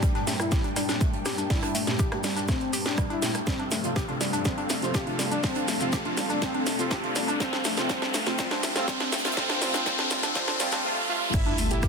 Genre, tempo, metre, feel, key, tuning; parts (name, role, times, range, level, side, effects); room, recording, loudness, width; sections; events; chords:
melodic techno; 122 BPM; 4/4; straight; A4 = 440 Hz
analog synth brass; melody; 0.0-11.9 s; C4 to E4; -33 LUFS; equal; chorus, sidechain pumping, tape echo
dark chamber string section; sustained chords; 0.0-11.9 s; F2 to A5; -38 LUFS; left 2 dB; stereo widening, sidechain pumping
woody wave-folded pluck; arpeggios; 0.0-11.9 s; G3 to G4; -33 LUFS; left 1 dB; chorus, sidechain pumping, tape echo
synth brass stab; stabs; 0.0-11.9 s; Bb2 to G4; -34 LUFS; right 2 dB; chorus, sidechain pumping, tape echo
swarming drone; drone; 0.0-11.9 s; G2 to G3; -41 LUFS; right 1 dB
electronic kick drum; drums; 0.0-11.9 s; -27 LUFS; equal
house drum kit; drums; 0.0-11.9 s; crash cymbal, hi-hat, rim click, snare drum; -31 LUFS; equal; high-pass filter on snare, high-pass filter on hats, high-pass filter on cymbals, high-pass filter on room
jazz brush drum kit; drums; 0.0-11.9 s; hi-hat, shaker, snare drum; -41 LUFS; right 3 dB
maracas; percussion; 0.0-11.9 s; -37 LUFS; left 3 dB
riser and sub drop; sound effects; 0.7-11.9 s; -32 LUFS; equal
airy breathy pad; texture; 0.0-11.9 s; C4 to A5; -36 LUFS; equal; chorus, sidechain pumping
rich chamber violin section; second line; 11.3-11.9 s; E5; -37 LUFS; right 1 dB; sidechain pumping, tape echo
dark detuned saw bass; bass; 11.3-11.9 s; G1; -29 LUFS; equal; sidechain pumping
moderate lush hall reverb, RT60 2.0 s, studio ambience; dense, heavily limited modern master, high-pass filter; -24 LUFS; side -5 dB against mid
0.0-11.3 A section
build-up 0.0-11.3; drum fill 0.0-10.8; filter sweep on analog polysynth 0.0-11.3; filter sweep on synth stab 0.0-11.3; filter sweep 0.0-11.3; riser 0.7-11.3; impact 11.3-11.9
0.0 Gmadd9; 3.5 F; 11.3 Gmadd9